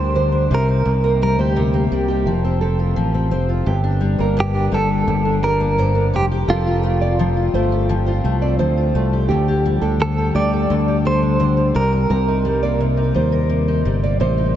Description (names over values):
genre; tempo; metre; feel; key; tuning
acoustic pop; 85 BPM; 4/4; straight; G minor; A4 = 440 Hz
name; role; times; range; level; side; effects
direct-recorded clean electric guitar; melody; 0.0-13.8 s; F4 to D5; -23 LUFS; right 2 dB; tremolo, diffuse ambient delay
fingerpicked steel-string acoustic guitar; accompaniment; 0.0-14.6 s; G2 to Bb4; -22 LUFS; left 5 dB; wide subtle chorus
fingered electric bass; bass; 0.0-14.5 s; F1 to Eb2; -19 LUFS; equal; none
nylon-string guitar; arpeggios; 0.2-14.6 s; G4 to D5; -26 LUFS; right 6 dB; none
room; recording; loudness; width
moderate huge ambient reverb, RT60 8.1 s; dreamy mix soaked in reverb, nothing above 7.8 kHz; -15 LUFS; side -11 dB against mid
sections
0.0-3.7 A section; 3.7-14.6 B section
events
none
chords
0.0 Dsus4; 0.5 Cm7; 2.3 F; 3.7 Gmadd9; 6.1 Fadd9; 9.3 Dsus4; 11.8 Cm7